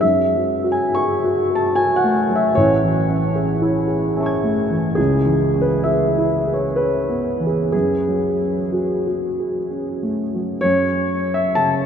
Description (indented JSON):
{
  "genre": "classical, impressionist solo piano",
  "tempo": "59-76 BPM",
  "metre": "3/4",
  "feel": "rubato",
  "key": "F# minor",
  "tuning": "A4 = 436 Hz",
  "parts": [
    { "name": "warm baby grand piano", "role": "solo", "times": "0.0-11.9 s", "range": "A1 to G#6", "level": "-16 LUFS", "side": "equal", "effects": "none" }
  ],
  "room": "wet huge ambient reverb, RT60 8.4 s",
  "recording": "in a vast, echoing space",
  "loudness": "-16 LUFS",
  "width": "side -8 dB against mid",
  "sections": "0.0-10.7 A section; 10.7-11.9 A section",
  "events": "none",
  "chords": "0.0 F#madd9; 2.5 Amaj7; 5.0 C#m7; 7.7 F#madd9; 10.7 F#5",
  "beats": "| 0.02 0.94 1.74 | 2.55 3.35 4.16 | 4.98 5.88 6.78 | 7.73 8.72 9.70 | 10.65 11.59"
}